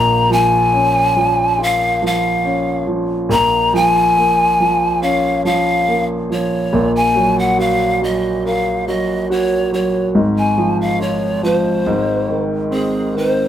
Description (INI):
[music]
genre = pop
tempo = 70 BPM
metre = 4/4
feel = straight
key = unclear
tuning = A4 = 441 Hz
[part]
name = breathy hollow pan flute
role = melody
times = 0.0-13.5 s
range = Ab4 to Bb5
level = -16 LUFS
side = left 1 dB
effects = none
[part]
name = warm grand piano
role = accompaniment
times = 0.0-13.5 s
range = Ab1 to Bb4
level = -17 LUFS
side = right 1 dB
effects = none
[sound]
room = moderate stone room reverb, RT60 1.0 s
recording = band playing live in one room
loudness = -14 LUFS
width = side -10 dB against mid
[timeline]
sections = 0.0-13.5 A section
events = none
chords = 0.0 Bbm7; 6.7 Gbmaj13/Bb; 10.2 Ab6; 11.9 Ab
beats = 0.73 1.58 2.44 | 3.30 4.16 5.01 5.87 | 6.73 7.58 8.44 9.30 | 10.16 11.01 11.87 12.73